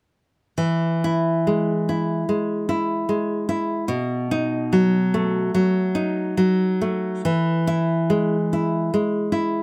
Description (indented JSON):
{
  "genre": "romantic piece for solo classical guitar",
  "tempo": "65-76 BPM",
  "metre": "4/4",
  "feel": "rubato",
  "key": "E major",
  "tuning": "A4 = 443 Hz",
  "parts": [
    { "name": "nylon-string guitar", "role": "solo", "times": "0.6-9.6 s", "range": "B2 to E4", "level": "-22 LUFS", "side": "equal", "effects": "none" }
  ],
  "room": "light reverb",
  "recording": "close, detailed microphones",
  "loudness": "-22 LUFS",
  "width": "mono",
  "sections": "0.6-7.3 A section; 7.3-9.6 B section",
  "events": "none",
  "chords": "0.6 E; 3.9 B7; 7.3 E"
}